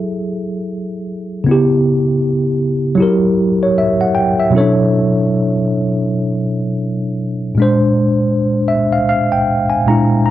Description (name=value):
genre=hip hop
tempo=79 BPM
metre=4/4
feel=swing 60% on 16ths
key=unclear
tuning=A4 = 439 Hz
part: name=mellow tine electric piano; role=solo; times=0.0-10.3 s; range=A#2 to A#5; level=-13 LUFS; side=equal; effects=medium stereo tremolo, cassette tape
room=wet small room reverb, RT60 0.5 s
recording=none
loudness=-13 LUFS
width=side -13 dB against mid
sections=0.0-10.3 A section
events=none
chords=0.0 F#m9; 1.5 C#m7b5; 3.0 F#7b9; 4.5 Bm11; 7.6 A#9